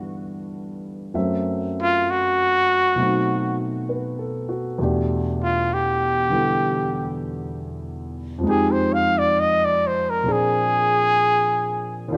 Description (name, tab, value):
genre	jazz ballad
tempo	66 BPM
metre	4/4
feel	swing 69% on 8ths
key	unclear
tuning	A4 = 441 Hz
part	dark grand piano	accompaniment	0.0-12.2 s	Eb2 to E5	-26 LUFS	equal	none
part	breathy trumpet	melody	1.8-12.1 s	F4 to F5	-22 LUFS	equal	none
room	light reverb, small room ambience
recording	rough home demo mix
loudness	-21 LUFS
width	mono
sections	0.0-12.2 A section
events	trumpet solo 0.0-12.2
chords	0.0 G; 1.2 F#m7b5; 3.0 B7b9; 4.8 Em7; 8.4 Fm7; 10.3 Bb9